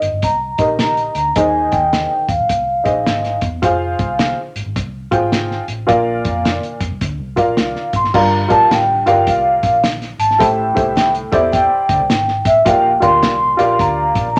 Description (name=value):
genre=uptempo 1960s-style soul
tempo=106 BPM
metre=4/4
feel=swing 64% on 8ths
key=unclear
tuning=A4 = 440 Hz
part: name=vibraphone with soft mallets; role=melody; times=0.0-3.4, 8.0-14.4 s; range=Eb5 to C6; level=-17 LUFS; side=equal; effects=none
part: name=vintage muted fingered electric bass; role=bass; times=0.0-14.4 s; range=F1 to F2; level=-28 LUFS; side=equal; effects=none
part: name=cloth-damped thuddy drum kit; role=drums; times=0.0-14.4 s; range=crash cymbal, hi-hat, kick drum, snare drum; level=-23 LUFS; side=equal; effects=none
part: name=warm upright piano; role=accompaniment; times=0.6-14.3 s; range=G2 to G5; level=-20 LUFS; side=equal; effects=none
room=moderate studio reverb, RT60 0.9 s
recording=none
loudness=-16 LUFS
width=mono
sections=0.0-8.1 A section; 8.1-14.4 B section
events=none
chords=0.0 Eb; 1.4 Ab; 3.6 Fm; 5.9 Bb; 8.1 Gm7; 10.4 Am7; 12.7 Gm7/Bb